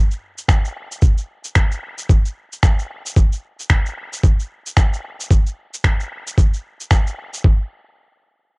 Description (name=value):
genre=organic downtempo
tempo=112 BPM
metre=4/4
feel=swing 60% on 16ths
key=none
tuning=none
part: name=electronic shaker and finger snaps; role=drums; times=0.1-7.4 s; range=none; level=-24 LUFS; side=equal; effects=cassette tape
part: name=electronic kick drum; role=drums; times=0.5-7.6 s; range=none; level=-13 LUFS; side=equal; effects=cassette tape
room=little or no reverb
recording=home recording on cassette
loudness=-16 LUFS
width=side -30 dB against mid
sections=0.0-7.4 A section; 7.4-8.6 B section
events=none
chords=none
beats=0.48 | 1.02 1.55 2.09 2.62 | 3.16 3.70 4.23 4.77 | 5.30 5.84 6.37 6.91 | 7.45